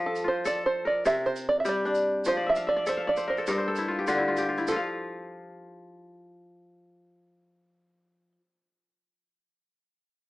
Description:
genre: west african traditional, West African string and xylophone music.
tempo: 99 BPM (dotted quarters).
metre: 12/8.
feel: straight.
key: F major.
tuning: A4 = 441 Hz.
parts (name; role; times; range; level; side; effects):
kora; arpeggios; 0.0-8.4 s; G2 to F5; -28 LUFS; left 1 dB; none.
open-back banjo; melody; 0.1-8.3 s; A4 to E5; -27 LUFS; right 2 dB; none.
tube shaker; percussion; 0.2-4.9 s; none; -44 LUFS; right 4 dB; none.
room: moderate studio reverb, RT60 0.7 s.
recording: small speaker sound.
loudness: -24 LUFS.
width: side -18 dB against mid.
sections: 0.0-4.7 A section; 4.7-7.1 B section.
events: kora fill 2.4-4.7.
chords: 0.0 F; 1.0 C5; 2.3 F; 3.5 Gm; 4.7 N.C..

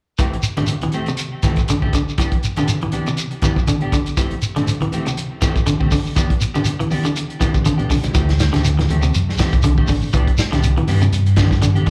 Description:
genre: afrobeat.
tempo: 121 BPM.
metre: 4/4.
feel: swing 56% on 16ths.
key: unclear.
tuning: A4 = 436 Hz.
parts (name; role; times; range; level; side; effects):
electric guitar at the edge of break-up; arpeggios; 0.2-11.9 s; C3 to E3; -25 LUFS; equal; slapback echo.
semi-hollow electric guitar; stabs; 0.2-11.9 s; E3 to G4; -30 LUFS; equal; lush chorus, tape echo, slapback echo.
vintage drum kit; drums; 0.2-11.9 s; hi-hat, kick drum, snare drum; -23 LUFS; equal; none.
congas; percussion; 0.2-11.9 s; none; -26 LUFS; equal; none.
shekere; percussion; 0.2-11.8 s; none; -26 LUFS; equal; slapback echo.
fingered electric bass; bass; 8.2-11.9 s; A1 to G2; -19 LUFS; equal; none.
room: light reverb.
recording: live gig heard through the venue's PA, club reverb.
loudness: -18 LUFS.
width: mono.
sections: 0.2-11.9 A section.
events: drum fill 7.5-8.2.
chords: 0.2 D9sus4; 2.2 Cmaj9 (rootless); 4.2 D9sus4; 6.2 G6/D; 8.2 D9sus4; 10.1 Cmaj9.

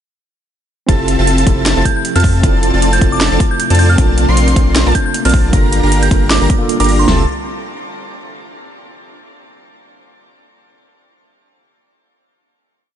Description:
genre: future bass.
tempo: 155 BPM.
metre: 4/4.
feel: swing 56% on 16ths, half-time.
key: F major.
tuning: A4 = 445 Hz.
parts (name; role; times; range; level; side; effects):
tine electric piano; accompaniment; 0.9-7.2 s; Bb3 to A4; -21 LUFS; right 3 dB; overdrive, fast stereo tremolo, sidechain pumping, tape echo.
airy breathy pad; sustained chords; 1.2-7.3 s; C3 to F4; -25 LUFS; left 3 dB; chorus, sidechain pumping.
airy dreamy lead; arpeggios; 0.9-7.2 s; A5 to C6; -22 LUFS; equal; chorus, sidechain pumping.
dense compressed supersaw; riff; 0.9-7.2 s; C4 to C6; -20 LUFS; equal; sidechain pumping, tape echo.
saturated sub bass; bass; 0.9-7.3 s; F1 to F2; -14 LUFS; equal; sidechain pumping.
pop drum kit; drums; 0.9-7.2 s; kick drum, snare drum, toms; -14 LUFS; equal; overdrive.
trap drum kit; drums; 0.9-7.0 s; hi-hat, snare drum; -20 LUFS; right 1 dB; none.
glassy synth bell; melody; 1.9-7.1 s; C6 to G6; -21 LUFS; right 2 dB; chorus, sidechain pumping, dub echo.
room: little or no reverb.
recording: nothing above 10.9 kHz.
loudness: -10 LUFS.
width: side -10 dB against mid.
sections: 0.9-7.1 drop; 7.1-8.6 final chord.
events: drop 0.9-7.1.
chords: 0.9 Fmaj7; 2.4 Dm7/F; 4.0 Bbmaj9; 5.5 Gm7; 7.1 Fmaj7.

